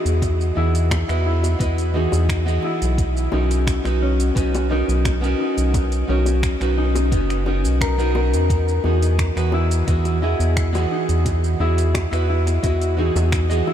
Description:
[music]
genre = sunset chillout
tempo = 87 BPM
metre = 4/4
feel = straight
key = E lydian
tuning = A4 = 439 Hz
[part]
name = nylon-string guitar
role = accompaniment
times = 0.0-13.7 s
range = E3 to D#5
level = -24 LUFS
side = right 2 dB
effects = auto-pan, diffuse ambient delay
[part]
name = concert harp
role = arpeggios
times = 0.0-13.7 s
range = C#4 to A#4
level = -26 LUFS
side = left 4 dB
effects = diffuse ambient delay
[part]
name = round analog bass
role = bass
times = 0.1-13.6 s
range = F#1 to E2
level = -19 LUFS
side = equal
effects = none
[part]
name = deep house drum kit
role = drums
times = 0.1-13.6 s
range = finger snaps, hi-hat, shaker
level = -32 LUFS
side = right 1 dB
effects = overdrive, studio ambience
[part]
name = electronic kick drum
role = drums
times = 0.2-13.5 s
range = none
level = -23 LUFS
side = equal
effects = studio ambience
[part]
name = bongos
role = percussion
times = 0.2-13.7 s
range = none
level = -34 LUFS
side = left 4 dB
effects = none
[sound]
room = light reverb, small room ambience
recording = none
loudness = -17 LUFS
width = side -10 dB against mid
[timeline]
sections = 0.0-13.7 A section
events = none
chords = 0.0 Emaj9; 3.0 Bmaj9; 8.5 Emaj9

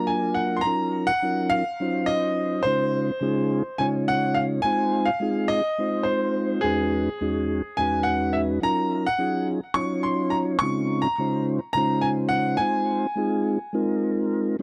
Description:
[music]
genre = jazz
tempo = 211 BPM (eighths)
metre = 7/8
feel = straight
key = Eb dorian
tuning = A4 = 440 Hz
[part]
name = bright grand piano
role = melody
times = 0.0-14.6 s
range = G#4 to Db6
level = -27 LUFS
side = equal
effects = none
[part]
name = mellow tonewheel organ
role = accompaniment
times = 0.0-14.6 s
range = E2 to Db5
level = -26 LUFS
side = equal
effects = slow rotary speaker
[sound]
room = light reverb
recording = dry, close 1970s-style studio recording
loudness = -24 LUFS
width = mono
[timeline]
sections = 0.7-14.6 A section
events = none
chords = 0.0 Bb7b13; 0.7 Ebm9; 2.7 Dbmaj9; 4.6 Fm7; 6.6 Emaj13; 8.6 Ebm9; 10.6 Dbmaj13; 12.6 Fm7

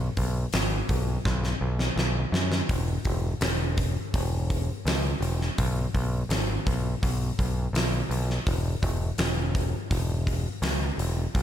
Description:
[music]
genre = rock, shoegaze and dream pop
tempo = 83 BPM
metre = 4/4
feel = straight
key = unclear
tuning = A4 = 441 Hz
[part]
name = growling picked electric bass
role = bass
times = 0.0-11.4 s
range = E1 to F#2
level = -27 LUFS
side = equal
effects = overdrive
[part]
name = huge arena drum kit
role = drums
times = 0.2-11.4 s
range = hi-hat, kick drum, snare drum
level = -28 LUFS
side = equal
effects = none
[sound]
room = light reverb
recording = none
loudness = -24 LUFS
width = side -10 dB against mid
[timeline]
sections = 0.0-11.4 A section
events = drum fill 1.3-2.7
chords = none

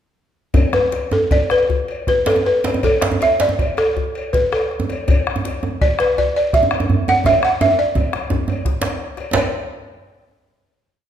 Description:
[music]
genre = west african traditional, West African drum ensemble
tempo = 104-123 BPM (dotted quarters)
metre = 12/8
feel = straight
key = D major pentatonic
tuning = A4 = 441 Hz
[part]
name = bombo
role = percussion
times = 0.5-9.5 s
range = none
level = -22 LUFS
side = equal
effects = none
[part]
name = cowbell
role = percussion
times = 0.5-9.5 s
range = none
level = -29 LUFS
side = left 4 dB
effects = none
[part]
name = djembe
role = percussion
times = 0.5-9.5 s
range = none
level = -26 LUFS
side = left 4 dB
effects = none
[part]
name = djembe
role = percussion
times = 0.5-9.5 s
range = none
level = -21 LUFS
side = right 3 dB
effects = none
[part]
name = balafon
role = melody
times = 0.7-8.8 s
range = A4 to F#5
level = -16 LUFS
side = equal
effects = none
[sound]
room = moderate recital hall reverb, RT60 1.4 s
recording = minimal, uncompressed stereo recording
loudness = -15 LUFS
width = side -10 dB against mid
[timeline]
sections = 0.5-9.3 A section; 9.3-11.1 final hit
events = speeding up 0.5-11.1; drum fill 7.3-9.3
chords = none

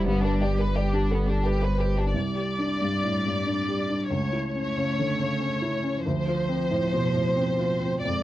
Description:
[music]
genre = neoclassical piano and strings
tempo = 86-93 BPM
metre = 3/4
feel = rubato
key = C major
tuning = A4 = 440 Hz
[part]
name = rich chamber violin section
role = melody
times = 0.0-8.2 s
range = B3 to D5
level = -29 LUFS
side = left 1 dB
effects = none
[part]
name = rich cello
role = second line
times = 0.0-8.2 s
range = F3 to A3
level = -30 LUFS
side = right 3 dB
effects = none
[part]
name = felt-muted upright piano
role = accompaniment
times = 0.0-8.2 s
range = C2 to D5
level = -28 LUFS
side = equal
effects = none
[part]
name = saturated sub bass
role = bass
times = 0.0-2.1 s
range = G1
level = -25 LUFS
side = equal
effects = none
[sound]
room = light reverb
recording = worn, warbling old tape, cassette tape, warbly pitch drift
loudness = -23 LUFS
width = side -14 dB against mid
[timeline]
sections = 0.0-2.1 A section; 2.1-8.2 B section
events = none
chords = 0.1 G; 2.1 Csus2; 4.1 A/C#; 6.1 Dm7

